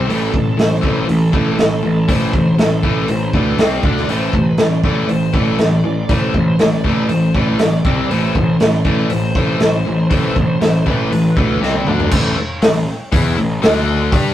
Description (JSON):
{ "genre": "hard rock", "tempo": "120 BPM", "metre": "4/4", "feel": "straight", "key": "A minor", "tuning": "A4 = 440 Hz", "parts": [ { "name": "bluesy overdriven lead guitar", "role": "melody", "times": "0.0-11.6 s", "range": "A4 to D5", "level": "-25 LUFS", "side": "equal", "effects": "distortion" }, { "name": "cranked stack guitar", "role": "riff", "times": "0.0-14.3 s", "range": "A2 to G4", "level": "-18 LUFS", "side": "left 3 dB", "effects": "overdrive" }, { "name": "sludgy distorted guitar", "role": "riff", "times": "0.0-12.1 s", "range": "A2 to D4", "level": "-22 LUFS", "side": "right 4 dB", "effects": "overdrive" }, { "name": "fuzz picked electric bass", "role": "bass", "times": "0.0-14.3 s", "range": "A1 to G2", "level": "-20 LUFS", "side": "right 1 dB", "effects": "overdrive" }, { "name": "raw garage drum kit", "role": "drums", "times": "0.1-14.2 s", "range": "crash cymbal, hi-hat, kick drum, snare drum, toms", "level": "-17 LUFS", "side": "equal", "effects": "none" } ], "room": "moderate studio reverb, RT60 0.5 s", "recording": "rough rehearsal-room recording, tube saturation", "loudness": "-13 LUFS", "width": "side -12 dB against mid", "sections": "0.0-12.1 A section; 12.1-14.3 B section", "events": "drum fill 11.6-12.1", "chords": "0.1 Am; 3.6 C5; 3.8 D5; 4.1 Am; 7.9 C5; 8.1 Am; 11.6 C5; 11.9 D5; 12.1 A5; 13.6 D5" }